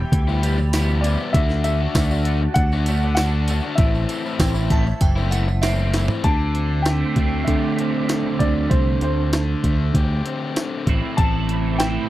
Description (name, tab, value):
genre	indie rock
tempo	98 BPM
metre	4/4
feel	straight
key	unclear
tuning	A4 = 441 Hz
part	warm upright piano	melody	0.0-12.1 s	C5 to A5	-28 LUFS	left 2 dB	tape echo
part	phased analog pad	sustained chords	0.0-6.2 s	E4 to B5	-34 LUFS	right 1 dB	phaser, chorus
part	biting overdriven guitar	riff	0.0-12.1 s	E2 to E4	-28 LUFS	right 7 dB	ensemble chorus
part	picked electric bass	bass	0.0-12.0 s	F#1 to D3	-20 LUFS	equal	none
part	jungle sampler-style drum kit	drums	0.1-11.9 s	hi-hat, kick drum, snare drum, tambourine, toms	-21 LUFS	equal	none
part	raw garage guitar	riff	0.3-12.1 s	E2 to G4	-27 LUFS	left 5 dB	overdrive
part	tambourine	percussion	0.3-6.2 s	none	-40 LUFS	right 6 dB	none
part	delicate synth tine bell	second line	4.4-6.2 s	E5 to A5	-31 LUFS	right 3 dB	chorus, phaser
room	little or no reverb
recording	dry, close 1970s-style studio recording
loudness	-18 LUFS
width	side -15 dB against mid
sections	0.0-6.2 A section; 6.2-12.1 B section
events	drum fill 5.9-6.2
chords	0.0 Em; 1.3 D; 3.8 Am; 6.2 D7sus4; 10.9 Am